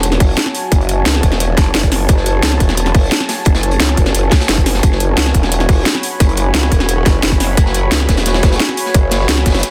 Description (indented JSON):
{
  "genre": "dark technical drum and bass",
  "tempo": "175 BPM",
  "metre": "4/4",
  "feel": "straight",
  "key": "F# minor",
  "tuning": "A4 = 440 Hz",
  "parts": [
    { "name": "deep dark ambient pad", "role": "sustained chords", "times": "0.0-9.7 s", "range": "F#4 to B5", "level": "-24 LUFS", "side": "equal", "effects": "chorus, built-in reverb, sidechain pumping" },
    { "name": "growl bass", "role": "bass", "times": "0.0-9.6 s", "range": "E1 to C#2", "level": "-18 LUFS", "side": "equal", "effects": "chorus" },
    { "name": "crunchy breakbeat drum kit", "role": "drums", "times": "0.0-9.7 s", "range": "hi-hat, snare drum", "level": "-27 LUFS", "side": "equal", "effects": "high-pass filter on hats, high-pass filter on snare, high-pass filter on room" },
    { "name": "drum and bass drum kit", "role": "drums", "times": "0.0-9.7 s", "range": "hi-hat, snare drum", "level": "-19 LUFS", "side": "equal", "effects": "overdrive" },
    { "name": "electronic kick drum", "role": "drums", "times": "0.2-9.5 s", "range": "none", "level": "-14 LUFS", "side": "equal", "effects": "overdrive" }
  ],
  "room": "light reverb",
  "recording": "dense, heavily limited modern master",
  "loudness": "-13 LUFS",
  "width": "mono",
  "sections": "0.0-9.7 A section",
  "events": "none",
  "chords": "0.0 F#m"
}